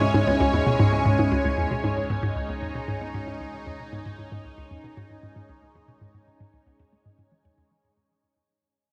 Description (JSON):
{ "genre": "ambient, sequencer-driven space music", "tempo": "115 BPM", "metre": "4/4", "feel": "straight", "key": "C# minor", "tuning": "A4 = 441 Hz", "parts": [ { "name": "lush unison pad", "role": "sustained chords", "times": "0.0-7.7 s", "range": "G#3 to G#5", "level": "-29 LUFS", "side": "equal", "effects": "chorus, phaser" }, { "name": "unison pluck", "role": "arpeggios", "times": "0.0-7.6 s", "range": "C#3 to C#5", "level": "-37 LUFS", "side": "equal", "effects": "none" }, { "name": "hollow square pluck", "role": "riff", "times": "0.0-7.6 s", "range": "C#2 to G#3", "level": "-27 LUFS", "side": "equal", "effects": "chorus, tape echo" }, { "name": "warm sub bass", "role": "bass", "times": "0.0-7.7 s", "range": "C#2", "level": "-43 LUFS", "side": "equal", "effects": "none" } ], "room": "wet lush hall reverb, RT60 2.7 s", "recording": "none", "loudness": "-24 LUFS", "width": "mono", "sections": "0.0-7.7 A section", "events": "fade-out 0.0-7.7; filter sweep on synth arpeggio sound 0.0-7.7", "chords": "0.0 C#m", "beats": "0.40 0.93 | 1.45 1.97 2.49 3.01 | 3.54 4.06 4.58 5.10 | 5.62 6.14 6.67 7.19" }